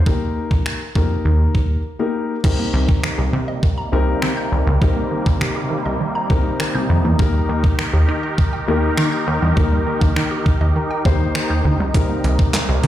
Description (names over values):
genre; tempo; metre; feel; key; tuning
dance-pop; 101 BPM; 4/4; straight; C minor; A4 = 439 Hz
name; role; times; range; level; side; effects
plucky analog bass; bass; 0.0-12.9 s; C2 to Eb3; -18 LUFS; equal; sidechain pumping
dark grand piano; accompaniment; 0.1-12.9 s; Bb3 to C5; -24 LUFS; left 4 dB; sidechain pumping
detuned 8-bit digital drum machine; drums; 0.1-12.9 s; crash cymbal, finger snaps, handclaps, hi-hat, kick drum, snare drum; -19 LUFS; equal; none
filtered supersaw swell; sustained chords; 2.4-12.9 s; C3 to Bb4; -25 LUFS; right 1 dB; sidechain pumping
hollow square pluck; arpeggios; 2.4-12.9 s; Eb3 to G6; -28 LUFS; right 4 dB; chorus, sidechain pumping, tape echo
room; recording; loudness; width
digital ambience; played on a big sound system in a bare room, stone room reverb; -16 LUFS; side -12 dB against mid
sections
0.0-2.4 A section; 2.4-12.9 B section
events
break 1.8-2.4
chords
0.0 Eb; 2.4 Cm7; 7.2 Eb; 11.9 Cm7